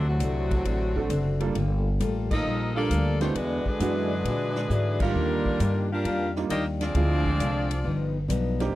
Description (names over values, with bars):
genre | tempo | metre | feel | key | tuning
jazz, big band swing | 133 BPM | 4/4 | swing 68% on 8ths | unclear | A4 = 440 Hz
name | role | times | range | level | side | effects
edgy saxophone section | melody | 0.0-8.1 s | D3 to F5 | -31 LUFS | left 2 dB | none
brilliant trombone section | second line | 0.0-8.1 s | A2 to F4 | -32 LUFS | right 2 dB | none
picked steel-string acoustic guitar | accompaniment | 0.0-8.6 s | G2 to A4 | -32 LUFS | left 5 dB | none
upright bass | bass | 0.0-8.7 s | F#1 to Bb2 | -27 LUFS | equal | none
swinging big-band drum kit | drums | 0.2-8.7 s | crash cymbal, hi-hat, kick drum, ride cymbal, snare drum | -33 LUFS | equal | none
clear concert grand piano | accompaniment | 1.0-8.7 s | Eb3 to A4 | -30 LUFS | right 4 dB | none
room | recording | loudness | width
little or no reverb | dry, close 1970s-style studio recording | -23 LUFS | side -16 dB against mid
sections
0.0-8.8 A section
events
band accent 2.2, 4.9; drum fill 4.7-5.2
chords
0.0 D7; 1.6 Gm9; 3.4 E9; 5.2 Ebmaj9; 7.0 Dm7b5; 7.8 G7b13